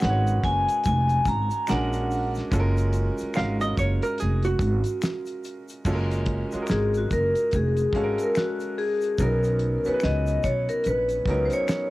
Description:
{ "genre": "R&B, neo-soul", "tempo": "72 BPM", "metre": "4/4", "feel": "swing 60% on 16ths", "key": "F# major", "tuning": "A4 = 440 Hz", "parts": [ { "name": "vibraphone with medium hard mallets", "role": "melody", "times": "0.0-11.9 s", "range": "F#4 to A#5", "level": "-25 LUFS", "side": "left 1 dB", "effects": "none" }, { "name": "warm grand piano", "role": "accompaniment", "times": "0.0-11.9 s", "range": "F#3 to E#5", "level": "-31 LUFS", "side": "right 2 dB", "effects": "cassette tape" }, { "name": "upright bass", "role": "bass", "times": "0.0-11.5 s", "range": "E#1 to C#2", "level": "-25 LUFS", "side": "equal", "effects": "tube saturation" }, { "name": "damped 70s drum kit", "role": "drums", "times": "0.0-11.9 s", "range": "crash cymbal, hi-hat, kick drum, snare drum", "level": "-28 LUFS", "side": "equal", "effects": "cassette tape" }, { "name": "finger snaps and egg shaker", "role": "percussion", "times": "0.0-11.9 s", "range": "none", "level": "-42 LUFS", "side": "left 4 dB", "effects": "none" }, { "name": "hollow-body jazz guitar", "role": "second line", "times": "3.4-5.6 s", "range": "F#4 to E#5", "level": "-28 LUFS", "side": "right 3 dB", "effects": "cassette tape" } ], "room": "little or no reverb", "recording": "home recording on cassette", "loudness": "-22 LUFS", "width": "side -18 dB against mid", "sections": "0.0-5.8 A section; 5.8-11.9 B section", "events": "vibraphone solo 5.8-11.9", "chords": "0.0 F#maj9; 1.7 A#7alt; 2.5 F#maj9; 9.2 Bmaj9", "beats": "0.01 0.85 1.68 | 2.52 3.35 4.18 5.01 | 5.85 6.68 7.51 8.35 | 9.18 10.02 10.85 11.68" }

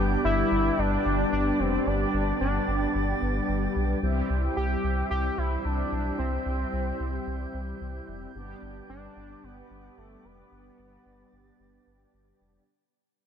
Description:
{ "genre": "pop", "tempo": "111 BPM", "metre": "4/4", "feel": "straight", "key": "unclear", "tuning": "A4 = 440 Hz", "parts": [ { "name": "mellow synth brass", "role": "accompaniment", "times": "0.0-12.6 s", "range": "G3 to G4", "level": "-30 LUFS", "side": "left 1 dB", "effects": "chorus, shimmer reverb" }, { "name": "small flute group", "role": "sustained chords", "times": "0.0-12.7 s", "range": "B4 to A6", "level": "-36 LUFS", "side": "right 1 dB", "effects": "shimmer reverb" }, { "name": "round analog bass", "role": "bass", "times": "0.0-12.6 s", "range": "F1 to C2", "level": "-30 LUFS", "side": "equal", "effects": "none" }, { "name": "octave-doubled lead", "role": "melody", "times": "0.2-12.1 s", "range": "A3 to G4", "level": "-30 LUFS", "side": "left 1 dB", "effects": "chorus, shimmer reverb, digital delay" } ], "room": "moderate lush hall reverb, RT60 2.6 s", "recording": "dark, warm production", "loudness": "-24 LUFS", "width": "side -8 dB against mid", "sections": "0.0-12.7 A section", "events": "fade-out 0.0-12.7", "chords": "0.0 G; 4.0 C; 8.4 G", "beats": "0.24 0.79 1.32 | 1.87 2.41 2.95 3.49 | 4.03 4.57 5.11 5.65 | 6.19 6.73 7.27 7.81 | 8.35 8.89 9.43 9.97 | 10.51 11.05 11.60 12.14" }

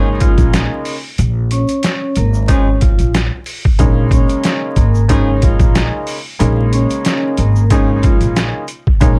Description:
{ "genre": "hip hop, boom-bap hip-hop", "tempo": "92 BPM", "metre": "4/4", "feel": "swing 54% on 16ths", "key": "Bb minor", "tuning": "A4 = 435 Hz", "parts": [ { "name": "vibraphone with medium hard mallets", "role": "melody", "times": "0.0-8.3 s", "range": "F3 to Db5", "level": "-22 LUFS", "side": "equal", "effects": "high-pass filter, low-pass filter, delay" }, { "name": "clear upright piano", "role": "accompaniment", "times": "0.0-9.2 s", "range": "Db3 to Eb4", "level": "-22 LUFS", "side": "equal", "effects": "cassette tape, high-pass filter, low-pass filter" }, { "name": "dark horn section", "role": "stabs", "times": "0.0-7.9 s", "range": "F3 to Ab4", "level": "-29 LUFS", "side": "equal", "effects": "high-pass filter, low-pass filter, delay" }, { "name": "upright bass", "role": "bass", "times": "0.0-9.2 s", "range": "Ab1 to Bb1", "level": "-17 LUFS", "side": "equal", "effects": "none" }, { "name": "boom bap sampler-style drum kit", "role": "drums", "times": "0.2-9.2 s", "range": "hi-hat, kick drum, snare drum", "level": "-17 LUFS", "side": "equal", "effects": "none" }, { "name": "egg shaker", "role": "percussion", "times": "0.2-9.2 s", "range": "none", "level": "-41 LUFS", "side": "equal", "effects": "none" } ], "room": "little or no reverb", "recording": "dark, warm production, vinyl crackle", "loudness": "-14 LUFS", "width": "mono", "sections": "0.0-9.2 A section", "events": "none", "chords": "0.0 Bbm7", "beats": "0.53 | 1.19 1.84 2.49 3.14 | 3.79 4.45 5.10 5.75 | 6.40 7.05 7.71 8.36 | 9.01" }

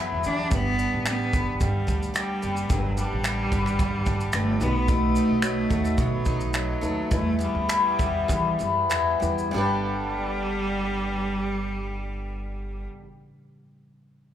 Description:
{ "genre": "acoustic pop", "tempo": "93-110 BPM", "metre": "4/4", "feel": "straight", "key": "G major", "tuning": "A4 = 442 Hz", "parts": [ { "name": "bright cello", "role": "melody", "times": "0.0-12.9 s", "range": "F#3 to D4", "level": "-28 LUFS", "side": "right 1 dB", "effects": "none" }, { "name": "mellow reed electric piano", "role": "accompaniment", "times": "0.0-14.3 s", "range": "E3 to B4", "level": "-36 LUFS", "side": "left 3 dB", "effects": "slapback echo" }, { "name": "picked twelve-string acoustic guitar", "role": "accompaniment", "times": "0.0-13.1 s", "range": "E2 to G4", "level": "-28 LUFS", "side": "left 3 dB", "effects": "none" }, { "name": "upright bass", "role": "bass", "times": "0.1-12.9 s", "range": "F#1 to E3", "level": "-29 LUFS", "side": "right 1 dB", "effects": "none" }, { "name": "natural country drum kit", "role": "drums", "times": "0.2-9.5 s", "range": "finger snaps, kick drum, shaker", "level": "-28 LUFS", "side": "equal", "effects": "none" } ], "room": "light reverb", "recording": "live gig heard through the venue's PA, club reverb", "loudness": "-22 LUFS", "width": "side -10 dB against mid", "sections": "0.0-9.5 A section; 9.5-14.3 B section", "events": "slowing down 4.9-9.5", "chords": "0.0 Em; 0.5 G; 4.6 B7; 7.1 Em; 9.5 G", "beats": "| 0.51 1.06 1.61 2.15 | 2.70 3.24 3.79 4.34 | 4.88 5.43 5.98 6.54 | 7.11 7.70 8.29 8.90 | 9.54 10.18 10.82 11.46 | 12.11 12.75 13.39 14.04" }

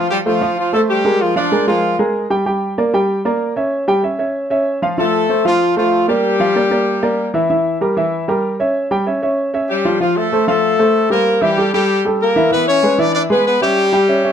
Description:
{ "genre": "latin", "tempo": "191 BPM", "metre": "4/4", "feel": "straight", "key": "unclear", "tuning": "A4 = 440 Hz", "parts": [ { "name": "brilliant horn section", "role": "melody", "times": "0.0-2.0, 5.0-7.3, 9.7-14.3 s", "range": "F3 to D5", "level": "-15 LUFS", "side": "left 2 dB", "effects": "plate reverb" }, { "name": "clear grand piano", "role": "accompaniment", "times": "0.0-14.3 s", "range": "E3 to G5", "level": "-16 LUFS", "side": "right 1 dB", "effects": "none" } ], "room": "moderate studio ambience, RT60 0.5 s", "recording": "dark, warm production", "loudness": "-13 LUFS", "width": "side -8 dB against mid", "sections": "0.0-14.3 A section", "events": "none", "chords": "0.0 Fadd9; 1.2 Bb7; 2.5 Gm6; 3.7 C#dim; 5.0 Dm7 (rootless); 6.2 Bb6; 7.5 Edim; 8.7 C#dim; 10.0 Fadd9; 11.3 A5; 12.5 E7; 13.8 Em6", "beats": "0.26 0.57 0.89 | 1.20 1.52 1.83 2.15 | 2.46 2.78 3.09 3.41 | 3.72 4.04 4.35 4.66 | 4.98 5.29 5.61 5.92 | 6.24 6.55 6.86 7.18 | 7.49 7.81 8.12 8.44 | 8.75 9.06 9.38 9.69 | 10.01 10.32 10.63 10.95 | 11.26 11.58 11.89 12.21 | 12.52 12.83 13.15 13.46 | 13.78 14.09" }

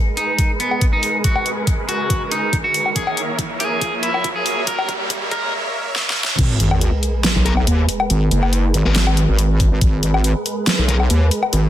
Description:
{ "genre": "heavy wobble dubstep", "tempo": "140 BPM", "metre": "4/4", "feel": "half-time", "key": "G# minor", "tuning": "A4 = 442 Hz", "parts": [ { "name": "supersaw chords", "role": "sustained chords", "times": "0.0-11.7 s", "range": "G#3 to E5", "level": "-26 LUFS", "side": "right 2 dB", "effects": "sidechain pumping, low-pass filter" }, { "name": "riser and sub drop", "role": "sound effects", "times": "1.1-8.1 s", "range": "none", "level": "-25 LUFS", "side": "equal", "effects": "none" }, { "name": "electric guitar at the edge of break-up", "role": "melody", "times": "0.2-5.5 s", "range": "B3 to A#4", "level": "-21 LUFS", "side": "equal", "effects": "ping-pong delay" }, { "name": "dubstep drum kit", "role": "drums", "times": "0.2-11.6 s", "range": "crash cymbal, hi-hat, snare drum, woodblock", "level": "-21 LUFS", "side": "left 2 dB", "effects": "overdrive, studio reverb" }, { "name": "electronic kick drum", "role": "drums", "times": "0.4-6.5, 9.6-9.9 s", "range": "none", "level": "-18 LUFS", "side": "equal", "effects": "overdrive, studio reverb" }, { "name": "wobble bass", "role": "bass", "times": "6.4-11.7 s", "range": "F#1 to D#2", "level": "-16 LUFS", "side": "equal", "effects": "chorus, overdrive" }, { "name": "sludgy distorted guitar", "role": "stabs", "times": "7.5-11.0 s", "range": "B3 to A#4", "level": "-26 LUFS", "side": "left 3 dB", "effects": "overdrive, ping-pong delay" } ], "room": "light reverb", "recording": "dense, heavily limited modern master, high-pass filter", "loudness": "-16 LUFS", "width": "side -12 dB against mid", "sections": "0.0-6.4 A section; 6.4-11.7 B section", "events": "build-up 0.0-6.4; filter sweep on supersaw synth 0.0-6.4; riser 1.1-5.5; drum fill 3.0-5.5, 6.0-6.4; drop 6.4-11.7; impact 6.4-8.1", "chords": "0.0 G#madd9; 3.0 A#dim; 6.4 G#madd9", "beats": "0.39 0.81 | 1.24 1.67 2.10 2.53 | 2.96 3.39 3.81 4.24 | 4.67 5.10 5.53 5.96 | 6.39 6.82 7.24 7.67 | 8.10 8.53 8.96 9.39 | 9.81 10.24 10.67 11.10 | 11.53" }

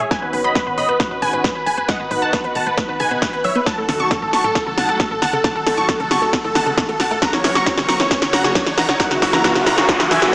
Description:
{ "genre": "uplifting trance", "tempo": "135 BPM", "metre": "4/4", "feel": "straight", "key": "unclear", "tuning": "A4 = 440 Hz", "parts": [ { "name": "big supersaw lead", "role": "melody", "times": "0.0-10.3 s", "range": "F#4 to C#6", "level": "-20 LUFS", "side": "equal", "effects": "phaser, sidechain pumping, low-pass filter, tape echo" }, { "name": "wide unison pluck", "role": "second line", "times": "0.0-10.3 s", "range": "F#4 to C#6", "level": "-23 LUFS", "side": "equal", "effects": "sidechain pumping" }, { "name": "tight sequenced synth", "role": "arpeggios", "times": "0.0-10.2 s", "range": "F#2 to B3", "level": "-28 LUFS", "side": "equal", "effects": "chorus, sidechain pumping, tape echo" }, { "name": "tight sequencer bass", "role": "bass", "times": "0.0-10.3 s", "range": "F#1 to D#2", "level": "-32 LUFS", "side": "equal", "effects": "sidechain pumping" }, { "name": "big-room dance drum kit", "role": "drums", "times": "0.0-10.3 s", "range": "hi-hat, snare drum", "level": "-20 LUFS", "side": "equal", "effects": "overdrive" }, { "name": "analog string pad", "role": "sustained chords", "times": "0.1-10.3 s", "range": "C#3 to F#4", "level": "-26 LUFS", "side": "equal", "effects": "ensemble chorus, sidechain pumping" }, { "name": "electronic kick drum", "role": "drums", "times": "0.1-10.0 s", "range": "none", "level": "-23 LUFS", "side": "equal", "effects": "overdrive" }, { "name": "riser and noise sweep", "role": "sound effects", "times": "6.9-10.3 s", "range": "none", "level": "-24 LUFS", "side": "equal", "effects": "none" } ], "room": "wet digital room reverb, RT60 1.0 s, digital ambience", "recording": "small speaker sound", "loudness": "-15 LUFS", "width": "side -22 dB against mid", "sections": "0.0-10.3 A section", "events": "build-up 0.0-10.3; drum fill 0.0-10.3; filter sweep on synth arpeggio sound 0.0-10.3; riser 6.9-10.3; noise sweep 9.0-10.3", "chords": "0.1 Badd9; 3.7 D#dim; 7.2 F#", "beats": "| 0.11 0.56 1.00 1.44 | 1.89 2.33 2.78 3.22 | 3.67 4.11 4.55 5.00 | 5.44 5.89 6.33 6.78 | 7.22 7.67 8.11 8.55 | 9.00 9.44 9.89 10.33" }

